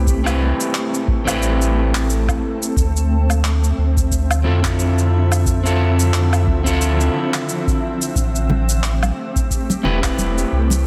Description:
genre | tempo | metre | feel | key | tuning
sunset chillout | 89 BPM | 4/4 | swing 57% on 16ths | A minor | A4 = 444 Hz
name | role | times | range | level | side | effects
electric guitar at the edge of break-up | accompaniment | 0.0-10.9 s | C4 to B4 | -24 LUFS | equal | tape echo
shimmering ambient pad | sustained chords | 0.0-10.9 s | D3 to E5 | -27 LUFS | equal | chorus, built-in reverb
warm sub bass | bass | 0.0-10.9 s | E1 to F2 | -20 LUFS | equal | none
electronic kick drum | drums | 0.1-10.2 s | none | -23 LUFS | equal | overdrive
electronic shaker, woodblock and handclaps | drums | 0.1-10.8 s | none | -28 LUFS | equal | overdrive
congas | percussion | 8.5-10.8 s | none | -26 LUFS | equal | none
room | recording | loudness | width
light reverb | dense, heavily limited modern master | -18 LUFS | mono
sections
0.0-10.9 A section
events
none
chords
0.0 Am7; 2.8 Dm9; 8.2 Am7

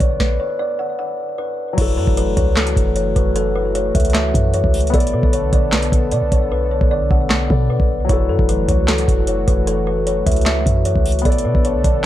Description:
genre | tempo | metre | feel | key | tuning
hip hop, trap | 152 BPM | 4/4 | half-time | F# minor | A4 = 440 Hz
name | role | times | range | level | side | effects
kalimba | melody | 0.0-12.0 s | A4 to F#5 | -21 LUFS | left 2 dB | low-pass filter, digital delay
dark grand piano | accompaniment | 0.0-12.1 s | F#3 to D5 | -27 LUFS | left 6 dB | low-pass filter
dark analog pad | sustained chords | 0.0-12.1 s | D3 to A4 | -26 LUFS | right 2 dB | chorus
clean 808-style bass | bass | 0.0-12.1 s | F#1 to B2 | -20 LUFS | equal | none
booming analog drum machine | drums | 0.0-12.0 s | crash cymbal, handclaps, hi-hat, kick drum, rim click, snare drum | -17 LUFS | equal | overdrive
room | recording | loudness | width
digital ambience | dark, warm production | -15 LUFS | side -13 dB against mid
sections
0.0-1.8 A section; 1.8-12.1 B section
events
stop 0.2-1.8; hi-hats muted 6.5-8.1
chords
0.0 Bm7; 1.8 F#m7; 4.9 Bm7; 8.1 F#m7; 11.3 Bm7

